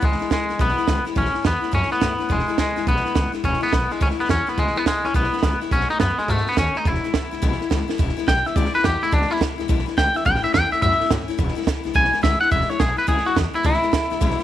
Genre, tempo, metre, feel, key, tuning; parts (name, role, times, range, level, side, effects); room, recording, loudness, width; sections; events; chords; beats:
rockabilly; 211 BPM; 4/4; swing 64% on 8ths; E major; A4 = 440 Hz
twangy electric guitar; melody; 0.0-14.4 s; G#3 to G#5; -21 LUFS; equal; tape echo
picked steel-string acoustic guitar; accompaniment; 0.0-14.4 s; E2 to F#4; -28 LUFS; left 11 dB
upright bass; bass; 0.0-14.4 s; E1 to A2; -24 LUFS; equal
compact cocktail drum kit; drums; 0.0-14.4 s; hi-hat, kick drum, snare drum; -24 LUFS; right 3 dB
light reverb, small room ambience; 1960s-style stereo; -18 LUFS; side -12 dB against mid
0.0-8.0 A section; 8.0-14.4 B section
drum fill 7.8; clean electric guitar solo 8.0-14.4
0.0 E; 1.2 A; 2.3 E; 5.7 B7; 6.9 E; 10.3 A; 11.4 E
| 0.03 0.31 0.59 0.88 | 1.16 1.45 1.73 2.02 | 2.30 2.59 2.87 3.16 | 3.44 3.73 4.01 4.29 | 4.58 4.86 5.15 5.43 | 5.72 6.00 6.29 6.57 | 6.85 7.14 7.42 7.71 | 7.99 8.27 8.56 8.84 | 9.12 9.41 9.69 9.97 | 10.26 10.54 10.82 11.11 | 11.39 11.67 11.95 12.23 | 12.52 12.80 13.08 13.37 | 13.65 13.93 14.21